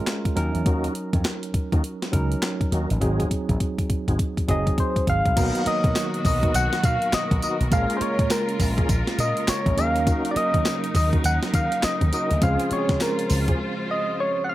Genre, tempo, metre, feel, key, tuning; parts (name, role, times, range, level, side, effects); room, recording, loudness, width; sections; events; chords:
R&B, new jack swing; 102 BPM; 4/4; swing 62% on 16ths; A4 = 439 Hz
tine electric piano; accompaniment; 0.0-14.5 s; F3 to Bb4; -29 LUFS; right 2 dB; medium stereo tremolo
clean 12-bit digital drum machine; drums; 0.1-13.6 s; crash cymbal, handclaps, hi-hat, kick drum, snare drum, tambourine; -24 LUFS; equal
slap bass with an envelope filter; bass; 0.4-13.5 s; Gb1 to Eb3; -24 LUFS; equal
tonewheel organ; stabs; 0.7-13.6 s; Cb4 to C5; -31 LUFS; left 1 dB; chorus vibrato, stopped rotary speaker
soft struck synth lead; melody; 4.5-14.5 s; Bb4 to Gb5; -25 LUFS; equal; chorus
rich studio string section; sustained chords; 5.4-14.5 s; Cb3 to C5; -31 LUFS; left 1 dB
little or no reverb; -20 LUFS; side -15 dB against mid
0.0-5.4 A section; 5.4-14.5 B section
drum fill 3.0-5.4; break 13.6-14.5
0.4 Ebm7; 3.0 Ab7; 5.4 Cbmaj7; 7.7 Bbm7; 9.8 Ebm7; 12.4 Dbmaj7